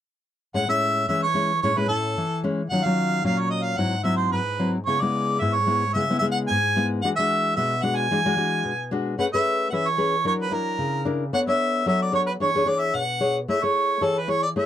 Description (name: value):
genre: samba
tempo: 111 BPM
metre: 4/4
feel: straight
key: A major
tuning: A4 = 439 Hz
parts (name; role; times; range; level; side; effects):
- warm harmonica; melody; 0.5-14.7 s; A4 to G#5; -23 LUFS; right 2 dB; none
- nylon-string guitar; accompaniment; 0.5-14.7 s; G#2 to C#5; -24 LUFS; left 2 dB; none
room: light reverb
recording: dark, warm production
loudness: -21 LUFS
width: side -10 dB against mid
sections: 0.5-14.7 A section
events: none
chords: 0.5 Amaj7; 2.7 D#m9; 3.8 G#aug7; 4.9 C#m7; 7.0 E9; 9.2 Amaj9; 10.3 F#7b13; 11.3 Bm9; 12.4 E6; 13.5 Amaj7